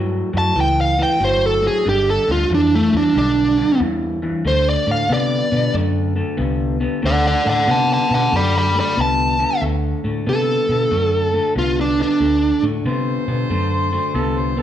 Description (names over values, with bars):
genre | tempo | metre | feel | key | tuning
electric blues shuffle | 93 BPM | 4/4 | swing 66% on 8ths | D mixolydian | A4 = 440 Hz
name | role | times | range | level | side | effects
electric guitar through a small old amp | riff | 0.0-14.6 s | G2 to B3 | -22 LUFS | left 2 dB | none
vintage muted fingered electric bass | bass | 0.0-14.6 s | G1 to C3 | -22 LUFS | equal | none
smooth overdriven lead guitar | melody | 0.4-12.6 s | A3 to B5 | -17 LUFS | right 1 dB | none
overdriven harmonica | second line | 12.9-14.6 s | A4 to C5 | -24 LUFS | equal | none
room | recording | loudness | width
moderate large studio reverb, RT60 1.3 s | band playing live in one room | -15 LUFS | side -10 dB against mid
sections
0.0-9.6 A section; 9.6-14.6 B section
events
lead electric guitar solo 0.0-9.6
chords
0.0 A7; 1.9 G; 4.4 D7